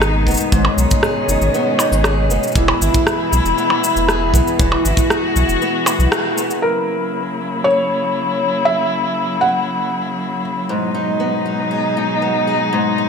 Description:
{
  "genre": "folktronica",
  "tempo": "118 BPM",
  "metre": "4/4",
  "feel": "straight",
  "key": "F# mixolydian",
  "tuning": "A4 = 440 Hz",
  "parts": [
    { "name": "warm string quartet", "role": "sustained chords", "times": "0.0-13.1 s", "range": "B2 to F#4", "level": "-20 LUFS", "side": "left 3 dB", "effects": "vintage 12-bit sampler grit, low-pass filter" },
    { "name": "picked old ladder-braced acoustic guitar", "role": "arpeggios", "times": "0.0-7.2, 10.7-13.1 s", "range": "G#2 to G#4", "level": "-19 LUFS", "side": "right 1 dB", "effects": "tape echo" },
    { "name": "warm sub bass", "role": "bass", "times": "0.0-6.1 s", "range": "E1 to B1", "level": "-17 LUFS", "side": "equal", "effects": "none" },
    { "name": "electronic rim click, shaker and percussion blips", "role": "drums", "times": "0.0-6.6 s", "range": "none", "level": "-20 LUFS", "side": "equal", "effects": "low-pass filter on perc, studio reverb, low-pass filter on snare" },
    { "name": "kick drum", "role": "drums", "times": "0.3-5.1 s", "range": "none", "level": "-18 LUFS", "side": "equal", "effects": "studio reverb" },
    { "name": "felt-muted upright piano", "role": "melody", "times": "6.6-10.4 s", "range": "A#4 to F#5", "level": "-19 LUFS", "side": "equal", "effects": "tape echo" }
  ],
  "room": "moderate echo chamber reverb, RT60 1.8 s, studio reverb",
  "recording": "none",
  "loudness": "-14 LUFS",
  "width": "side -6 dB against mid",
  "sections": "0.0-6.6 A section; 6.6-13.1 B section",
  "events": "break 6.1-6.6; band accent 6.1; filter sweep on string quartet 6.6-13.1",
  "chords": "0.0 G#m; 2.6 E; 6.6 F#7; 10.7 G#m7"
}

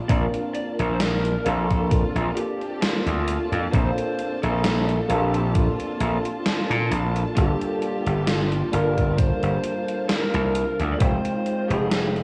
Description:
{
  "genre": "vaporwave",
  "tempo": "66 BPM",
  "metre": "4/4",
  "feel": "swing 54% on 16ths",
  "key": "Bb major",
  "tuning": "A4 = 441 Hz",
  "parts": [
    { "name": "rich studio string section", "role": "sustained chords", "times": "0.0-12.2 s", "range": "Bb3 to A5", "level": "-39 LUFS", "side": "equal", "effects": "vintage 12-bit sampler grit" },
    { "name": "lead guitar through a small cranked amp", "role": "melody", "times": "0.1-12.2 s", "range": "F4 to D5", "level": "-31 LUFS", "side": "equal", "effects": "overdrive, tape echo" },
    { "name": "overdriven tine electric piano", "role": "accompaniment", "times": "0.1-12.2 s", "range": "G3 to G5", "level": "-30 LUFS", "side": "equal", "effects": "ensemble chorus" },
    { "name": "gritty slap bass", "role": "bass", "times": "0.1-12.2 s", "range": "F1 to Bb2", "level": "-26 LUFS", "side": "equal", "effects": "overdrive, tube saturation" },
    { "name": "electronic kick drum", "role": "drums", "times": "0.1-11.2 s", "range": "none", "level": "-24 LUFS", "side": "equal", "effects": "overdrive" },
    { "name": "gated 80s digital drum machine", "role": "drums", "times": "0.1-12.2 s", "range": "hi-hat, snare drum", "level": "-30 LUFS", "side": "equal", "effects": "gated reverb, gated reverb snare, overdrive" }
  ],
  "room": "light reverb",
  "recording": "cassette tape, studio reverb",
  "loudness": "-23 LUFS",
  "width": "mono",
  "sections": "0.0-12.2 A section",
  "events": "none",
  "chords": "0.0 Bbmaj7; 7.4 Gm9; 11.0 Fm7"
}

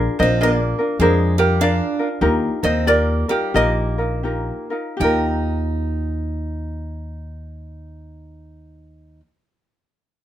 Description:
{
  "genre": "Hawaiian",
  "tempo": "78-103 BPM",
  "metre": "4/4",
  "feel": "swing 64% on 8ths",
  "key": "Eb major",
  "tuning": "A4 = 440 Hz",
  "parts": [
    { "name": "ukulele", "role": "accompaniment", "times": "0.0-9.3 s", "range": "D4 to Bb4", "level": "-22 LUFS", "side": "left 2 dB", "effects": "none" },
    { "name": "upright bass", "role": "bass", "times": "0.0-9.2 s", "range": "Bb1 to F2", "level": "-22 LUFS", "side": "equal", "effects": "none" },
    { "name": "ukulele", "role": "melody", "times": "0.2-9.2 s", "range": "G4 to G5", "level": "-20 LUFS", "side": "right 1 dB", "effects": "none" },
    { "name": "picked steel-string acoustic guitar", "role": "second line", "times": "0.2-9.2 s", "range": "G3 to Eb4", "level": "-28 LUFS", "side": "right 5 dB", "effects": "none" }
  ],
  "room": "light reverb",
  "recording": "minimal, uncompressed stereo recording",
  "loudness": "-17 LUFS",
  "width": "side -12 dB against mid",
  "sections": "0.0-5.0 A section; 5.0-8.1 B section",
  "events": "slowing down 0.0-5.0",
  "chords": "0.0 Bb7; 2.2 Ebadd9"
}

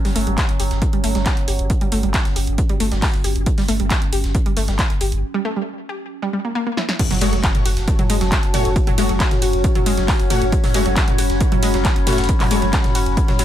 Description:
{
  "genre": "driving peak-time techno",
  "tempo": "136 BPM",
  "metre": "4/4",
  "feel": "straight",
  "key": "F# minor",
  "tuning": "A4 = 441 Hz",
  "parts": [
    { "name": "analog pluck", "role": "riff", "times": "0.0-13.4 s", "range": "F#3 to G4", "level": "-24 LUFS", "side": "equal", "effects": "chorus, sidechain pumping, tape echo" },
    { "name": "warm sub bass", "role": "bass", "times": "0.0-13.4 s", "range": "F#1 to G1", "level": "-22 LUFS", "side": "equal", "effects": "overdrive, sidechain pumping, low-pass filter" },
    { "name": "overtone-sweeping drone", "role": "drone", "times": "0.0-13.4 s", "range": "F#3 to C#4", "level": "-28 LUFS", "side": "equal", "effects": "chorus, built-in reverb, sidechain pumping" },
    { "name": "breakbeat sampler-style drum kit", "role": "drums", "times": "0.1-13.4 s", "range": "hi-hat, snare drum", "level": "-33 LUFS", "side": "equal", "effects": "high-pass filter on hats, high-pass filter on snare, high-pass filter on room" },
    { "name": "punchy analog drum machine", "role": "drums", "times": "0.1-13.4 s", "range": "crash cymbal, handclaps, hi-hat, ride cymbal, snare drum, toms", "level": "-24 LUFS", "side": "equal", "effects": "sidechain pumping on hats, sidechain pumping on cymbals, sidechain pumping on toms" },
    { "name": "electronic kick drum", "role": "drums", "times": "0.4-13.3 s", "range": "none", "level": "-19 LUFS", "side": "equal", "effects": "none" },
    { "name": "impact", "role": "sound effects", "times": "7.0-8.8 s", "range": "none", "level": "-28 LUFS", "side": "equal", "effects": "none" },
    { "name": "warbly tape-like pad", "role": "texture", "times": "7.6-13.4 s", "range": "F#4 to B5", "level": "-26 LUFS", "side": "left 2 dB", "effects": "chorus, built-in reverb, sidechain pumping" },
    { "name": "rave stab", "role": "stabs", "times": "7.2-12.6 s", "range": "A3 to C#5", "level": "-26 LUFS", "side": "left 2 dB", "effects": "chorus, built-in reverb, sidechain pumping, dub echo" }
  ],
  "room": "light reverb",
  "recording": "none",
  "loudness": "-16 LUFS",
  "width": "side -11 dB against mid",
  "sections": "0.0-7.0 A section; 7.0-13.4 B section",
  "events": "filter sweep on synth arpeggio sound 0.0-7.0; break 5.2-7.0; drum fill 6.8; drop 7.0-13.4; impact 7.0-8.8",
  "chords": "0.0 N.C.; 7.0 F#m"
}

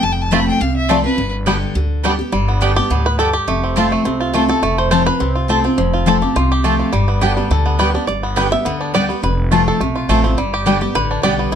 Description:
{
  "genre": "bluegrass",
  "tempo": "209 BPM",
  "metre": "4/4",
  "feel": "straight",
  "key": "G mixolydian",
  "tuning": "A4 = 439 Hz",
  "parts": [
    { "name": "clear fiddle", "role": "melody", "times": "0.0-1.3 s", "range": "B4 to B5", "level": "-20 LUFS", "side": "left 3 dB", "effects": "none" },
    { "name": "picked steel-string acoustic guitar", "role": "accompaniment", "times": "0.0-11.6 s", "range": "F2 to G4", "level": "-18 LUFS", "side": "left 2 dB", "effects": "none" },
    { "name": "upright bass", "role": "bass", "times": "0.0-11.6 s", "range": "F1 to D2", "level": "-20 LUFS", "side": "equal", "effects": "none" },
    { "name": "bluegrass banjo", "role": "melody", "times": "0.3-11.6 s", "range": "F3 to E5", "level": "-19 LUFS", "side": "right 1 dB", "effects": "none" },
    { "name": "mandolin", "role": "stabs", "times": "0.3-11.3 s", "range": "B3 to A5", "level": "-20 LUFS", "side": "right 2 dB", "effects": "none" }
  ],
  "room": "light reverb",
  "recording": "close, detailed microphones, lossy compression artefacts",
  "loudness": "-14 LUFS",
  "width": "side -8 dB against mid",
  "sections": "0.0-2.3 A section; 2.3-11.5 A section",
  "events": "fiddle solo 0.0-2.3; five-string banjo solo 2.3-11.6",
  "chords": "0.0 F; 1.2 G; 3.5 F; 6.9 G; 9.2 F; 10.4 G"
}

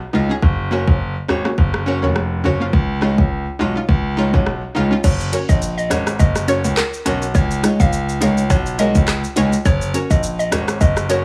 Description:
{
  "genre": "dancehall",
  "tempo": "104 BPM",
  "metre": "4/4",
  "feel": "swing 56% on 16ths",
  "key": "F# major",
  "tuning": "A4 = 440 Hz",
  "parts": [
    { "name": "analog pluck", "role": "accompaniment", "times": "0.1-11.2 s", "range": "A#3 to D#5", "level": "-27 LUFS", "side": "equal", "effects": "chorus, sidechain pumping" },
    { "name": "nylon-string guitar", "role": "arpeggios", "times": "0.1-11.2 s", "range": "G#3 to C#5", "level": "-23 LUFS", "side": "equal", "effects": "none" },
    { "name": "bright grand piano", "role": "bass", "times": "0.1-11.2 s", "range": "E#1 to C#2", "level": "-22 LUFS", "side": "equal", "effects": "none" },
    { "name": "afro-pop drum kit", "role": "drums", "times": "0.4-11.2 s", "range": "crash cymbal, handclaps, hi-hat, kick drum, rim click, shaker", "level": "-20 LUFS", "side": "equal", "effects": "none" },
    { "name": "hollow square pluck", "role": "melody", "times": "5.0-11.2 s", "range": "A#4 to E#5", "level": "-26 LUFS", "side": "equal", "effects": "chorus" }
  ],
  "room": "digital ambience",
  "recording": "small room ambience",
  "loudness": "-18 LUFS",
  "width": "mono",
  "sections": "0.0-5.0 A section; 5.0-11.2 B section",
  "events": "none",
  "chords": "0.4 F#; 2.7 C#add9; 5.0 F#; 7.3 C#add9; 9.7 F#"
}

